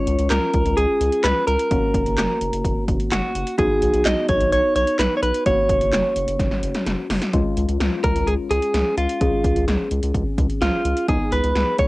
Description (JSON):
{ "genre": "synth-pop", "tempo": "128 BPM", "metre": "4/4", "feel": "straight", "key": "Db mixolydian", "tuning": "A4 = 439 Hz", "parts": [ { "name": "direct-recorded clean electric guitar", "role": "melody", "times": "0.0-11.9 s", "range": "F4 to Eb5", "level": "-20 LUFS", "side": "right 1 dB", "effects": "cassette tape" }, { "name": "muted felt-like synth keys", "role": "accompaniment", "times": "0.0-11.9 s", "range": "Ab3 to Ab4", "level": "-25 LUFS", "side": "left 2 dB", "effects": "chorus, cassette tape" }, { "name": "round analog bass", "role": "bass", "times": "0.1-11.9 s", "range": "Gb1 to Db2", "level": "-24 LUFS", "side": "equal", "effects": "none" }, { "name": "80s electronic pad drums", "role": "drums", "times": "0.1-11.9 s", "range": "handclaps, hi-hat, kick drum, snare drum", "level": "-23 LUFS", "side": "equal", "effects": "cassette tape" } ], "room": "wet booth ambience, RT60 0.2 s", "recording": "home recording on cassette", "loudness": "-18 LUFS", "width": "side -20 dB against mid", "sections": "0.0-7.3 A section; 7.3-11.9 B section", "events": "drum fill 6.4-7.3", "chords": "0.0 Db; 1.7 Gb; 3.6 Cb; 5.5 Gb; 7.3 Db; 11.1 Abm/Db", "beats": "0.30 0.77 1.24 | 1.71 2.18 2.65 3.12 | 3.58 4.05 4.52 4.99 | 5.46 5.93 6.40 6.87 | 7.33 7.80 8.27 8.74 | 9.21 9.68 10.15 10.62 | 11.09 11.55" }